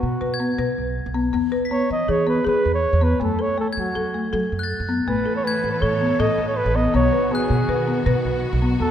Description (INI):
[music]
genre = contemporary instrumental, chamber music in an uneven meter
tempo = 160 BPM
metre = 5/4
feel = straight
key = unclear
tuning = A4 = 440 Hz
[part]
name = warm flugelhorn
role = melody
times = 0.0-8.9 s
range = F#4 to D#5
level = -24 LUFS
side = right 2 dB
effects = none
[part]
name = folk marimba with medium hard mallets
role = arpeggios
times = 0.0-8.9 s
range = A3 to B4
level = -22 LUFS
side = left 2 dB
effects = none
[part]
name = upright bass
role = bass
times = 0.0-8.9 s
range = A1 to F#3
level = -24 LUFS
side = right 1 dB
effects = none
[part]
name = glockenspiel with brass mallets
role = texture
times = 0.3-8.1 s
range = F#6 to B6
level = -32 LUFS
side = left 2 dB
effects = none
[part]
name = clear studio string section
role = sustained chords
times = 5.1-8.9 s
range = D#3 to A4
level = -29 LUFS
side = equal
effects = none
[sound]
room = wet concert hall reverb, RT60 2.2 s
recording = none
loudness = -19 LUFS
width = side -9 dB against mid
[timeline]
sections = 0.0-8.9 A section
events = none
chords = 0.0 B5; 1.3 E; 3.2 F#m; 5.1 Asus2; 6.9 B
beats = 0.22 0.59 0.97 | 1.34 1.71 2.09 2.46 2.84 | 3.21 3.58 3.96 4.33 4.71 | 5.08 5.45 5.83 6.20 6.57 | 6.95 7.32 7.69 8.07 8.44 | 8.81